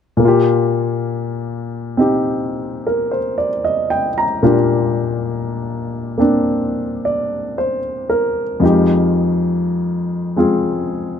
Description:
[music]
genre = jazz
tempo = 57 BPM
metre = 4/4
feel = swing 68% on 8ths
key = Eb major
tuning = A4 = 440 Hz
[part]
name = warm baby grand piano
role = accompaniment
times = 0.2-11.2 s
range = F2 to Bb5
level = -15 LUFS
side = left 1 dB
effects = none
[sound]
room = light reverb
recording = close, detailed microphones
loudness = -15 LUFS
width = side -8 dB against mid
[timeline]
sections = 0.2-11.2 A section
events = none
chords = 0.2 Ebmaj7/Bb; 8.6 Fm7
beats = | 0.21 1.26 2.31 3.37 | 4.42 5.47 6.52 7.57 | 8.62 9.67 10.72

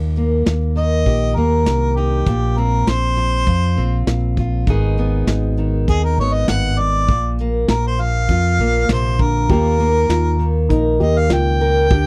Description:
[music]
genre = acoustic folk duo or small band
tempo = 100 BPM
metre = 4/4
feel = straight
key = Eb major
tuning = A4 = 441 Hz
[part]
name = fingerpicked steel-string acoustic guitar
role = accompaniment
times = 0.0-12.1 s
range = Eb2 to Bb4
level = -23 LUFS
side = equal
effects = none
[part]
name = fingered electric bass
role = bass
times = 0.0-12.1 s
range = Ab1 to F2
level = -20 LUFS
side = equal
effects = none
[part]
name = soft brush drum kit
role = drums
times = 0.2-12.1 s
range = hi-hat, kick drum, snare drum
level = -22 LUFS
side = equal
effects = none
[part]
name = warm harmonica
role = melody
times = 0.8-12.1 s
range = G4 to G5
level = -23 LUFS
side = equal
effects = none
[part]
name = dark upright piano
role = arpeggios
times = 9.5-12.1 s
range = Eb4 to G4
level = -26 LUFS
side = equal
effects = none
[sound]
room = little or no reverb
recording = dry, close 1970s-style studio recording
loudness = -17 LUFS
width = mono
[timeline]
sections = 0.0-12.1 A section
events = harmonica solo 0.0-12.1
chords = 0.0 Eb; 2.3 Bbsus2; 4.7 Abm; 7.1 Bb; 9.5 Ebsus2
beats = 0.46 1.06 1.66 | 2.27 2.87 3.47 4.07 | 4.67 5.28 5.88 6.48 | 7.09 7.69 8.29 8.90 | 9.50 10.10 10.71 11.31 | 11.91

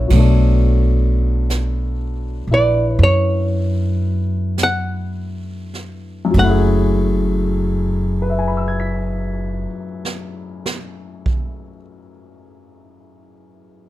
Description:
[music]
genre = jazz ballad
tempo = 32-45 BPM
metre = 4/4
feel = swing 66% on 8ths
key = F# minor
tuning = A4 = 440 Hz
[part]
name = warm baby grand piano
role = accompaniment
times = 0.0-13.9 s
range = F#2 to B6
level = -21 LUFS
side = left 3 dB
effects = none
[part]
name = upright bass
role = bass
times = 0.0-9.7 s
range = F#1 to F#2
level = -17 LUFS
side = equal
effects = none
[part]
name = jazz brush drum kit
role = drums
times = 0.1-11.6 s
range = brushed snare drum, crash cymbal, hi-hat, kick drum, ride cymbal, snare drum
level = -23 LUFS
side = right 2 dB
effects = none
[part]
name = archtop guitar, miked and amplified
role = melody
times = 2.5-9.7 s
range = C#5 to F#5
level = -18 LUFS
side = right 1 dB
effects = none
[sound]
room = little or no reverb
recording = close, detailed microphones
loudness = -16 LUFS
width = side -15 dB against mid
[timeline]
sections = 0.1-6.3 A section; 6.3-13.7 B section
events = slowing down 0.0-6.3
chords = 0.1 Bm9; 6.3 F#m9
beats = | 0.11 1.50 2.98 4.58 | 6.34 8.20 10.05 11.89

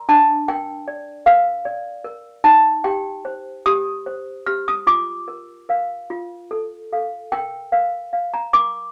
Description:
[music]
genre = classical, lullaby for toy piano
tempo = 50 BPM (dotted quarters)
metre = 6/8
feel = rubato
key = Bb major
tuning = A4 = 440 Hz
[part]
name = toy piano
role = solo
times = 0.0-8.9 s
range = D4 to F6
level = -20 LUFS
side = equal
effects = none
[sound]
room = moderate small room reverb, RT60 0.5 s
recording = none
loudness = -19 LUFS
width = mono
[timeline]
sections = 0.0-8.9 A section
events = none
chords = 0.1 Bb/D; 2.4 Cm/Eb; 4.9 Bb/F; 6.1 F; 7.3 Bb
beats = | 0.08 1.26 | 2.44 3.66 | 4.87 6.10 | 7.33 8.54

